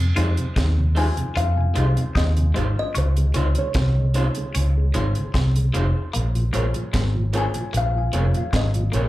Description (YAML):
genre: lovers rock reggae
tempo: 75 BPM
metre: 4/4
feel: straight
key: F minor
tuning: A4 = 438 Hz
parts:
  - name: mellow tonewheel organ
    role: accompaniment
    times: 0.0-9.0 s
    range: F2 to Ab4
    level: -30 LUFS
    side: right 1 dB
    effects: chorus vibrato, slow rotary speaker, dub echo, slapback echo
  - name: vintage muted fingered electric bass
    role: bass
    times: 0.0-9.1 s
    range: F1 to F2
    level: -20 LUFS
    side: equal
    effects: none
  - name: FM electric piano with soft pad layer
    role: accompaniment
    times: 0.2-9.1 s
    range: Db4 to C5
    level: -34 LUFS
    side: left 3 dB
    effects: chorus, dub echo, plate reverb, slapback echo
  - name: twangy electric guitar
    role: riff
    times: 0.2-9.0 s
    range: F3 to F4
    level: -33 LUFS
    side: left 4 dB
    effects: phaser, slapback echo
  - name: electric guitar through a small old amp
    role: stabs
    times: 0.2-9.0 s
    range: Ab3 to Db5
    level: -32 LUFS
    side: right 2 dB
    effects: spring reverb, dub echo, plate reverb, slapback echo
  - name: deep reggae drum kit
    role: drums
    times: 0.2-9.1 s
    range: hi-hat, kick drum, snare drum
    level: -27 LUFS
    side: equal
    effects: none
  - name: kalimba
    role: melody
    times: 1.0-9.1 s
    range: C5 to Ab5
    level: -29 LUFS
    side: left 2 dB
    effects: tape echo, plate reverb, slapback echo
room: light reverb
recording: live gig heard through the venue's PA, club reverb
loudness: -19 LUFS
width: side -16 dB against mid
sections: 0.0-9.1 A section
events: none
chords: 0.0 Fm7; 3.0 Dbmaj7; 6.1 Bbm7